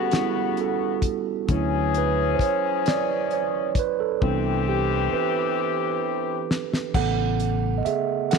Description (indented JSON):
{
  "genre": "slow six-eight R&B",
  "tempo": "44 BPM (dotted quarters)",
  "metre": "6/8",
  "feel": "straight",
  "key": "A major",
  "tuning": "A4 = 440 Hz",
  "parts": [
    { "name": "mellow tine electric piano", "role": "accompaniment", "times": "0.0-8.4 s", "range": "C#3 to F#5", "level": "-24 LUFS", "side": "right 11 dB", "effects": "none" },
    { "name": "warm horn section", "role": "stabs", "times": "0.0-6.4 s", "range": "C#3 to G#4", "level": "-26 LUFS", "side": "left 13 dB", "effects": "none" },
    { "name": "damped 70s drum kit", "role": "drums", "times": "0.1-8.4 s", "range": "crash cymbal, hi-hat, kick drum, snare drum", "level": "-26 LUFS", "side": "left 2 dB", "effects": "none" },
    { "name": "fretless electric bass", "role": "bass", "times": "1.5-7.9 s", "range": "A1 to D2", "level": "-25 LUFS", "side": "left 3 dB", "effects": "none" }
  ],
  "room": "light reverb, small room ambience",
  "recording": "1960s-style stereo with parts hard left and right",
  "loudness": "-21 LUFS",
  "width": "side -5 dB against mid",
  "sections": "0.0-6.9 A section; 6.9-8.4 B section",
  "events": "tine electric piano solo 0.0-6.9, 6.9-8.4; drum fill 4.2-6.9",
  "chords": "0.0 A13; 1.5 Dmaj9; 4.2 Cmaj7; 6.9 Amaj9"
}